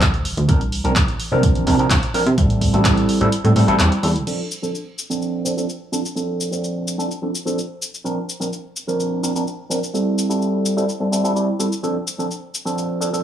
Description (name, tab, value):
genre	filtered disco house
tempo	127 BPM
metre	4/4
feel	straight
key	D minor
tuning	A4 = 440 Hz
part	overdriven tine electric piano	accompaniment	0.0-13.2 s	F3 to D5	-20 LUFS	right 1 dB	phaser, sidechain pumping, low-pass filter
part	plucky analog bass	bass	0.0-4.2 s	D1 to C3	-19 LUFS	right 1 dB	sidechain pumping, low-pass filter
part	electronic kick drum	drums	0.0-2.9 s	none	-19 LUFS	equal	none
part	punchy analog drum machine	drums	0.0-13.2 s	crash cymbal, handclaps, hi-hat, shaker	-25 LUFS	left 1 dB	sidechain pumping on hats, sidechain pumping on cymbals, sidechain pumping on perc
room	light reverb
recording	none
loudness	-18 LUFS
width	side -10 dB against mid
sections	0.0-4.3 A section; 4.3-13.2 B section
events	kick drops out 3.3-4.3; filter sweep on tine electric piano 4.3-13.2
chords	0.5 C9sus4; 2.4 Am7; 4.3 Dm7; 8.0 C9sus4; 9.9 Am7; 11.8 Dm7